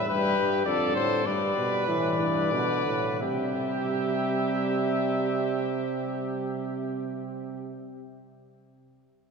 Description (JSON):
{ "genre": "classical, imitative canzona for brass ensemble", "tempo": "84-106 BPM", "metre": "3/4", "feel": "straight", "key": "C major", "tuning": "A4 = 440 Hz", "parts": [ { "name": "warm cornet", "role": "melody", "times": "0.0-7.8 s", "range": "B4 to E5", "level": "-30 LUFS", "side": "left 7 dB", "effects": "none" }, { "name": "clear trumpet", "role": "second line", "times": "0.0-7.8 s", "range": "G4 to B4", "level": "-33 LUFS", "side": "right 3 dB", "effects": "none" }, { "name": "warm euphonium", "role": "accompaniment", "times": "0.0-7.8 s", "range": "D3 to G3", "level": "-32 LUFS", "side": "right 2 dB", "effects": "none" }, { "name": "clear bass trombone", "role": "bass", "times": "0.0-7.8 s", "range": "F2 to C3", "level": "-30 LUFS", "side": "right 3 dB", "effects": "none" } ], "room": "wet church reverb, RT60 3.3 s", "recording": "recorded in a church or concert hall", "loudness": "-25 LUFS", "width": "side -5 dB against mid", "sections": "0.0-3.2 A section; 3.2-7.4 B section", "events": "slowing down 0.0-3.2", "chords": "0.0 Em (rootless); 0.7 Dm/F; 1.3 G; 3.2 C", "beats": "0.09 0.67 | 1.26 1.88 2.53 | 3.21 3.92 4.62 | 5.32 6.02 6.73" }